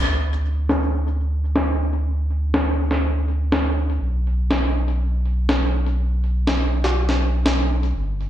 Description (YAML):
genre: IDM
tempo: 122 BPM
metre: 4/4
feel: straight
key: unclear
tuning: A4 = 439 Hz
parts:
  - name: warm sub bass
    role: bass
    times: 0.0-8.3 s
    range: G1 to D2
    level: -20 LUFS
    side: equal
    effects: none
  - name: electronic snare drum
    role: drums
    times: 0.7-7.6 s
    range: none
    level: -22 LUFS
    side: equal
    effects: overdrive, low-pass filter on snare, low-pass filter on hats, low-pass filter on room, ping-pong delay
room: light reverb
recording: played on a big sound system in a bare room, large studio reverb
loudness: -19 LUFS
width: side -11 dB against mid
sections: 0.1-8.3 A section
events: filter sweep on drum 0.1-8.3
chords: none